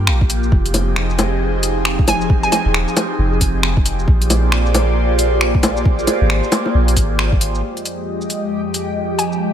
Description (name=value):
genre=future garage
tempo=135 BPM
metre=4/4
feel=swing 61% on 16ths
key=F dorian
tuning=A4 = 440 Hz
part: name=airy breathy pad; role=sustained chords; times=0.0-9.5 s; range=F2 to F5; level=-20 LUFS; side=equal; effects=chorus, phaser, sidechain pumping
part: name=soft 808-style bass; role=bass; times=0.0-7.6 s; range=Eb1 to Bb1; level=-18 LUFS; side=equal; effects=tube saturation, sidechain pumping
part: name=organic electronic drum kit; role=drums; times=0.1-9.4 s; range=bongos, finger snaps, hi-hat, shaker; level=-20 LUFS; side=left 1 dB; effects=overdrive
part: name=electronic kick drum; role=drums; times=0.2-7.4 s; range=none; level=-16 LUFS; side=equal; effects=overdrive
part: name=hollow square pluck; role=melody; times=2.1-2.6, 9.2-9.4 s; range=Ab5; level=-21 LUFS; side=right 1 dB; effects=chorus, ping-pong delay
part: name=backwards swelling texture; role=texture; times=8.3-9.5 s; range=G4 to G5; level=-30 LUFS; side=right 1 dB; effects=built-in reverb
room=light reverb, digital ambience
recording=none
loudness=-14 LUFS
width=side -9 dB against mid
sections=0.0-7.6 A section; 7.6-9.5 B section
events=none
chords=0.0 Gm7; 0.5 Fm9; 4.1 Bb13; 7.6 Fm9